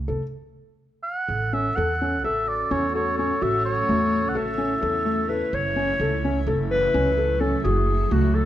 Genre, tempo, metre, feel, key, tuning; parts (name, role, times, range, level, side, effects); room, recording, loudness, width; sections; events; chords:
contemporary instrumental, chamber music in an uneven meter; 254 BPM (eighths); 9/8; straight; A4 = 440 Hz
upright bass; bass; 0.0-8.5 s; F#1 to E2; -26 LUFS; right 2 dB
felt-muted upright piano; arpeggios; 0.1-8.4 s; A3 to A4; -26 LUFS; left 2 dB
warm oboe; melody; 1.0-5.3 s; C#5 to F#5; -25 LUFS; right 1 dB
mellow clarinet; second line; 1.3-8.5 s; F#4 to C#5; -26 LUFS; left 2 dB
granular cloud pad; sustained chords; 2.5-8.5 s; F#3 to F#4; -32 LUFS; equal; built-in reverb
light reverb; close, detailed microphones; -21 LUFS; side -12 dB against mid
0.0-1.3 A section; 1.3-8.5 A section
stop 0.2-1.3
0.0 F#m; 1.3 A6; 5.5 F#m7